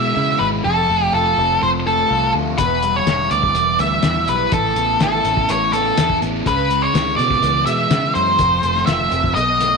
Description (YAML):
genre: psychedelic rock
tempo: 124 BPM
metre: 4/4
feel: straight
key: unclear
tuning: A4 = 440 Hz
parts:
  - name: octave-fuzz lead guitar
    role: melody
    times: 0.0-9.8 s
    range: A4 to E5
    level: -17 LUFS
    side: equal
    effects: distortion, slapback echo
  - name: fuzz guitar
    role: riff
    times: 0.0-9.8 s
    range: E2 to F4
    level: -22 LUFS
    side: equal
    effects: distortion, phaser
  - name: fingered electric bass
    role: bass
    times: 0.0-9.8 s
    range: E1 to C#3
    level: -24 LUFS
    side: equal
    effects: none
  - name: cloth-damped thuddy drum kit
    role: drums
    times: 2.6-9.7 s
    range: hi-hat, kick drum, snare drum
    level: -22 LUFS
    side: left 4 dB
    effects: none
room: light reverb, small room reverb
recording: 1960s-style stereo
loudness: -15 LUFS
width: side -4 dB against mid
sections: 0.0-9.8 A section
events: none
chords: 0.0 C#m7; 0.7 F; 2.6 Em; 4.5 Aadd9; 6.5 C#m7; 8.4 F